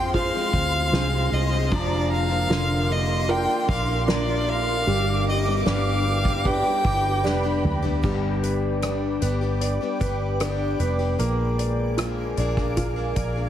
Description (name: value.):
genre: pop ballad.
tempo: 76 BPM.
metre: 4/4.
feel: straight.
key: unclear.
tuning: A4 = 440 Hz.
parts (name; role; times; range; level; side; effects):
clear violin; melody; 0.0-7.6 s; D5 to G5; -26 LUFS; left 1 dB; ping-pong delay.
warm studio violin section; second line; 0.0-8.0 s; Bb5 to D6; -32 LUFS; right 1 dB; ping-pong delay.
clear concert grand piano; accompaniment; 0.0-13.5 s; D3 to D5; -29 LUFS; right 3 dB; none.
granular cloud pad; sustained chords; 0.0-13.5 s; Ab4 to D6; -33 LUFS; right 2 dB; built-in reverb.
picked plugged-in steel-string acoustic guitar; arpeggios; 0.0-13.5 s; F2 to Ab4; -30 LUFS; left 8 dB; none.
vintage muted fingered electric bass; bass; 0.0-13.5 s; F1 to F2; -26 LUFS; equal; none.
soft-mallet drum kit; drums; 0.1-13.3 s; crash cymbal, hi-hat, kick drum, ride cymbal, rim click, snare drum, toms; -28 LUFS; right 1 dB; none.
room: small room ambience.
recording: heavily compressed radio sound, multiband compression.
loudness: -21 LUFS.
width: side -10 dB against mid.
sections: 0.0-8.0 A section; 8.0-13.5 B section.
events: drum fill 7.2-8.0.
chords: 0.0 Fm; 1.7 Bb/F; 4.9 G; 11.2 Bb7.